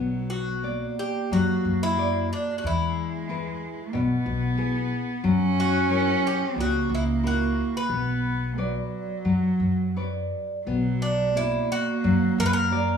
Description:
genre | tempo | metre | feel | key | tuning
fado-style ballad | 83-94 BPM | 4/4 | rubato | B harmonic minor | A4 = 440 Hz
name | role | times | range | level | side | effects
warm cello | second line | 0.0-13.0 s | F#3 to C#4 | -28 LUFS | right 4 dB | none
nylon-string guitar | accompaniment | 0.0-13.0 s | B2 to D5 | -27 LUFS | left 2 dB | none
upright bass | bass | 0.0-13.0 s | B1 to F#2 | -29 LUFS | left 2 dB | none
Irish bouzouki | melody | 0.3-13.0 s | D4 to B4 | -28 LUFS | left 1 dB | none
room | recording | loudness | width
moderate large studio reverb, RT60 1.2 s | band playing live in one room, studio reverb | -22 LUFS | side -7 dB against mid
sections
0.0-10.7 A section; 10.7-13.0 A section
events
none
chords
0.0 Bmadd9; 2.6 E; 5.2 F#7; 7.9 Bmadd9

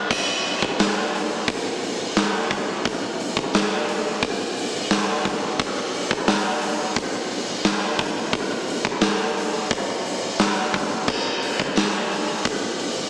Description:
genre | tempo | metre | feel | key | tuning
rock | 88 BPM | 4/4 | straight | none | none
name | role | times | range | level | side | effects
huge arena drum kit | drums | 0.1-13.0 s | crash cymbal, hi-hat, kick drum, snare drum | -20 LUFS | equal | none
tambourine | percussion | 0.8-11.9 s | none | -34 LUFS | equal | none
room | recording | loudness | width
light reverb | small speaker sound | -20 LUFS | side -27 dB against mid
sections
0.1-13.1 A section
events
none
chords
none

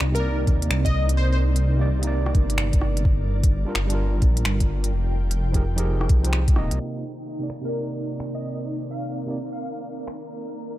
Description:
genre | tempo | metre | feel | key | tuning
future garage | 128 BPM | 4/4 | swing 65% on 16ths | C minor | A4 = 438 Hz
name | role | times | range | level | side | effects
ethereal airy pad | sustained chords | 0.0-10.8 s | G3 to Bb5 | -33 LUFS | right 1 dB | ensemble chorus, built-in reverb, tremolo, sidechain pumping
dark detuned saw bass | bass | 0.0-6.8 s | Eb1 to Eb2 | -22 LUFS | equal | none
organic electronic drum kit | drums | 0.0-10.2 s | finger snaps, hi-hat, rim click | -29 LUFS | equal | low-pass filter on snare, low-pass filter on hats, low-pass filter on room
plucky unison lead | melody | 0.1-1.4, 7.7-9.8 s | Bb4 to F5 | -32 LUFS | left 2 dB | wide subtle chorus, dub echo
overdriven tine electric piano | accompaniment | 0.1-9.4 s | C3 to Eb5 | -30 LUFS | right 2 dB | sidechain pumping, dub echo
electronic kick drum | drums | 0.5-6.5 s | none | -19 LUFS | equal | none
wind-like tuned noise texture | texture | 8.3-10.8 s | Bb3 to Bb4 | -41 LUFS | equal | built-in reverb
room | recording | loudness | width
light reverb | low-pass filter | -20 LUFS | side -15 dB against mid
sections
0.0-6.8 A section; 6.8-10.8 B section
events
filter sweep 6.8-10.8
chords
0.0 Cm9; 3.0 Gm7; 4.9 Fm11; 6.8 Cm9

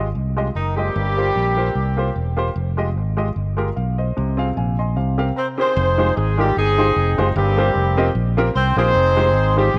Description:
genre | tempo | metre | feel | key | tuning
uptempo gospel | 150 BPM | 4/4 | swing 55% on 8ths | F minor | A4 = 441 Hz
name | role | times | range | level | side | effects
warm baby grand piano | accompaniment | 0.0-9.7 s | G2 to C6 | -26 LUFS | equal | none
fingered electric bass | bass | 0.0-9.8 s | E1 to C2 | -22 LUFS | equal | none
warm horn section | melody | 0.5-2.3, 5.4-9.8 s | Eb3 to C5 | -22 LUFS | equal | none
room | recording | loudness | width
moderate plate reverb, RT60 3.2 s | none | -19 LUFS | mono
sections
0.0-5.8 A section; 5.8-9.8 B section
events
grand piano fill 4.6-5.8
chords
0.0 Fm9; 1.0 C7sus4/G; 2.6 Fm9; 4.2 Fm/C; 5.0 C7sus4; 5.8 Fm9; 7.4 C7sus4; 8.9 Fm9

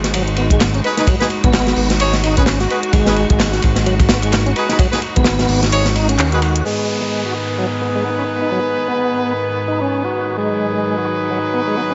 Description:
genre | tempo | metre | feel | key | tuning
breakbeat, breaks | 129 BPM | 4/4 | swing 58% on 16ths | G# minor | A4 = 441 Hz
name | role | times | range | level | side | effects
clear symphonic string section | sustained chords | 0.0-11.9 s | G#2 to F#4 | -26 LUFS | equal | sidechain pumping
fat analog bass | bass | 0.0-6.6 s | G#1 to D#2 | -20 LUFS | equal | tube saturation
crunchy breakbeat drum kit | drums | 0.0-6.5 s | hi-hat, kick drum, ride cymbal, snare drum | -19 LUFS | equal | none
garage drum kit | drums | 0.0-6.6 s | handclaps, hi-hat | -28 LUFS | equal | none
tonewheel organ | riff | 0.1-11.9 s | F#3 to F#4 | -24 LUFS | equal | chorus vibrato, fast rotary speaker, low-pass filter, dub echo
bright horn section | stabs | 0.8-11.9 s | D#4 to C#5 | -23 LUFS | equal | vintage 12-bit sampler grit, dub echo
downlifter | sound effects | 6.7-10.4 s | none | -32 LUFS | equal | none
room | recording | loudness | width
light reverb, small room ambience | nothing above 7.8 kHz | -16 LUFS | mono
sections
0.0-6.7 A section; 6.7-11.9 B section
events
kick drops out 5.7-6.7; band accent 6.2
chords
0.0 G#m

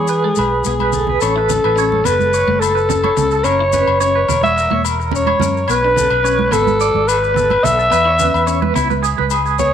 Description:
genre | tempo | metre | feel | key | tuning
highlife guitar band | 108 BPM | 4/4 | straight | A major | A4 = 439 Hz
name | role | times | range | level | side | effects
growling alto saxophone | melody | 0.0-9.7 s | G#4 to E5 | -15 LUFS | left 1 dB | none
clean electric guitar | accompaniment | 0.0-9.7 s | G#3 to E4 | -25 LUFS | left 13 dB | wide subtle chorus
clean electric guitar | arpeggios | 0.0-9.7 s | E4 to D5 | -21 LUFS | right 11 dB | tremolo
fingered electric bass | bass | 0.0-9.7 s | E1 to E3 | -21 LUFS | equal | none
maracas | percussion | 0.1-9.7 s | none | -28 LUFS | left 17 dB | none
agogo bells | percussion | 0.4-9.5 s | none | -23 LUFS | left 13 dB | none
congas | percussion | 0.4-9.7 s | none | -24 LUFS | right 9 dB | none
room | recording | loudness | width
moderate spring reverb, RT60 1.6 s, small room ambience | 1960s-style stereo with parts hard left and right | -13 LUFS | side -9 dB against mid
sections
0.0-1.2 A section; 1.2-9.7 B section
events
drum fill 0.7-1.2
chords
0.0 E; 1.2 A; 3.4 F#7; 5.7 Bm; 7.9 E

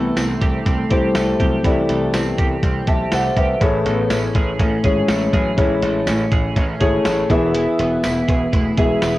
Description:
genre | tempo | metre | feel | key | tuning
1980s-style pop | 122 BPM | 4/4 | straight | unclear | A4 = 440 Hz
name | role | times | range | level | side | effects
mellow horn-like synth lead | melody | 0.0-9.2 s | F#3 to B3 | -24 LUFS | equal | chorus, cassette tape, plate reverb
dark concert grand piano | accompaniment | 0.0-9.2 s | A2 to A5 | -19 LUFS | left 2 dB | cassette tape, plate reverb
twelve-string electric guitar | riff | 0.0-9.2 s | E3 to G#4 | -26 LUFS | right 4 dB | analog chorus, cassette tape
slap bass | bass | 0.0-9.2 s | E1 to C2 | -24 LUFS | equal | none
lo-fi sampler-style drum kit | drums | 0.2-9.1 s | hi-hat, kick drum, snare drum | -20 LUFS | equal | cassette tape
tambourine | percussion | 0.2-9.1 s | none | -38 LUFS | left 2 dB | none
room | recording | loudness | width
moderate studio reverb, RT60 0.6 s | home recording on cassette | -15 LUFS | side -16 dB against mid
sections
0.0-9.2 A section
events
none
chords
0.0 C6; 3.6 Amaj7; 7.3 E

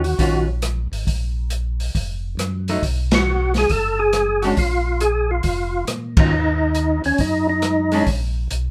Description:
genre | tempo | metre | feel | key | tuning
soul jazz organ trio | 137 BPM | 4/4 | swing 66% on 8ths | Eb minor | A4 = 442 Hz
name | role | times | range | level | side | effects
percussive tonewheel organ | melody | 0.0-0.4, 3.1-8.0 s | Db4 to A4 | -22 LUFS | equal | slow rotary speaker, overdrive, chorus vibrato
archtop guitar, miked and amplified | accompaniment | 0.0-8.1 s | Eb3 to F4 | -24 LUFS | equal | none
mellow tonewheel organ | bass | 0.0-8.7 s | F1 to Bb2 | -25 LUFS | equal | slow rotary speaker
open jazz drum kit | drums | 0.0-8.6 s | hi-hat, kick drum, ride cymbal, rim click, snare drum | -25 LUFS | equal | none
room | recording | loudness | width
light reverb | band playing live in one room | -20 LUFS | mono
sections
0.0-8.7 A section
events
band accent 3.0, 6.1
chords
0.0 Ebm9; 1.1 Bb5; 2.8 B5; 4.6 Bb5; 6.3 Ebm; 8.1 N.C.

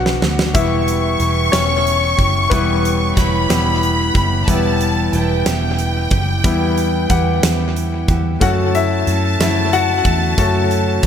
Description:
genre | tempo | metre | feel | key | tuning
six-eight pop ballad | 61 BPM (dotted quarters) | 6/8 | straight | E dorian | A4 = 440 Hz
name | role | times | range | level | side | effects
bright concert grand piano | accompaniment | 0.0-11.1 s | F#3 to A5 | -20 LUFS | left 8 dB | tape echo
picked steel-string acoustic guitar | arpeggios | 0.0-11.1 s | F#2 to G4 | -24 LUFS | right 8 dB | none
vintage muted fingered electric bass | bass | 0.0-11.1 s | E1 to F#2 | -19 LUFS | right 1 dB | none
huge arena drum kit | drums | 0.1-11.1 s | hi-hat, kick drum, snare drum | -20 LUFS | right 1 dB | tape echo
bright studio violin section | second line | 0.5-11.1 s | G5 to C#6 | -21 LUFS | equal | tape echo
room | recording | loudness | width
light reverb, small room ambience | echo-heavy mix | -14 LUFS | side -8 dB against mid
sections
0.0-11.1 A section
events
drum fill 0.0-0.5; grand piano solo 0.0-11.1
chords
0.0 Bm; 0.5 Em; 8.4 F#m

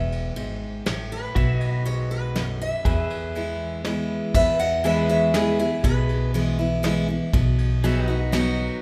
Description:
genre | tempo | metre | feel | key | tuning
honky-tonk and classic country | 121 BPM | 3/4 | straight | E major | A4 = 440 Hz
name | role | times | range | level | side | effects
picked steel-string acoustic guitar | melody | 0.0-6.3 s | E4 to F#5 | -28 LUFS | equal | none
picked steel-string acoustic guitar | accompaniment | 0.0-8.8 s | E2 to F#4 | -28 LUFS | equal | none
pedal steel guitar | sustained chords | 0.0-8.8 s | F#4 to E5 | -35 LUFS | equal | none
upright bass | bass | 0.0-8.7 s | E1 to E2 | -28 LUFS | equal | none
soft brush drum kit | drums | 0.1-8.4 s | crash cymbal, kick drum, ride cymbal, snare drum | -31 LUFS | equal | none
room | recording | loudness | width
wet recital hall reverb, RT60 1.8 s | none | -23 LUFS | mono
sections
0.0-4.4 A section; 4.4-8.8 B section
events
none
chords
0.0 E; 1.4 B; 2.9 E; 7.3 B

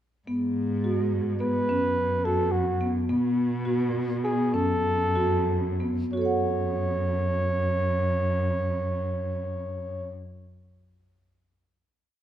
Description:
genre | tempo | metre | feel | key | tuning
contemporary instrumental, chamber music in an uneven meter | 174-214 BPM (eighths) | 5/8 | straight | F# minor | A4 = 437 Hz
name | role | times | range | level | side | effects
marimba with soft mallets | arpeggios | 0.3-10.2 s | B3 to F#5 | -27 LUFS | right 1 dB | none
warm cello | bass | 0.3-10.1 s | F#2 to B2 | -28 LUFS | left 1 dB | none
breathy flugelhorn | melody | 1.4-10.1 s | F#4 to C#5 | -28 LUFS | right 1 dB | none
room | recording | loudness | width
light reverb | minimal, uncompressed stereo recording | -24 LUFS | side -11 dB against mid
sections
0.3-6.1 A section; 6.1-9.6 final chord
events
slowing down 3.1-6.1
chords
0.3 G#m7; 1.7 F#5; 3.1 B5; 4.5 F#m

